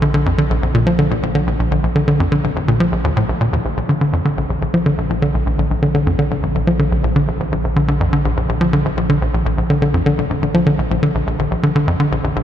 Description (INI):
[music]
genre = ambient, sequencer-driven space music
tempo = 124 BPM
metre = 4/4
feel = straight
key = Bb major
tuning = A4 = 442 Hz
[part]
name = tight sequencer bass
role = riff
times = 0.0-12.4 s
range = Bb1 to F3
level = -15 LUFS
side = equal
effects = ping-pong delay
[part]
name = warm sub bass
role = bass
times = 0.0-12.4 s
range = Bb1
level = -24 LUFS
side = equal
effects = none
[sound]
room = wet cathedral reverb, RT60 5.0 s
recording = in a vast, echoing space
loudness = -14 LUFS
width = side -10 dB against mid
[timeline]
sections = 0.0-12.4 A section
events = none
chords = 0.0 Bb